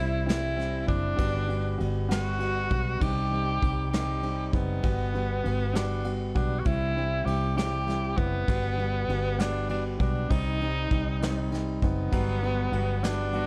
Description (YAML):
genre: six-eight pop ballad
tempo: 66 BPM (dotted quarters)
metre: 6/8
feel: straight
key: G major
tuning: A4 = 444 Hz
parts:
  - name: bright tenor saxophone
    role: melody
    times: 0.0-13.5 s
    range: B3 to G4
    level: -34 LUFS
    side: equal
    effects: slapback echo
  - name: warm upright piano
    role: accompaniment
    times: 0.0-13.5 s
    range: G3 to F#4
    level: -34 LUFS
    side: equal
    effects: none
  - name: vintage muted fingered electric bass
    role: bass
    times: 0.0-13.5 s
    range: F#1 to C2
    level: -32 LUFS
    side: equal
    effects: none
  - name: vintage brush drum kit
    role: drums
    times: 0.3-13.5 s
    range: kick drum, ride cymbal, snare drum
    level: -34 LUFS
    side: equal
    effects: none
  - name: twangy electric guitar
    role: arpeggios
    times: 12.1-13.5 s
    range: F#3 to F#4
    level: -41 LUFS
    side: equal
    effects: slapback echo
room: light reverb, small room ambience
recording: dark, warm production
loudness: -28 LUFS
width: mono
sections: 0.0-13.5 A section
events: none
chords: 0.0 C; 1.2 Gmaj7; 3.0 Cm; 4.8 Gmaj7; 6.7 C; 8.5 Gmaj7; 10.3 Cm; 12.1 Gmaj7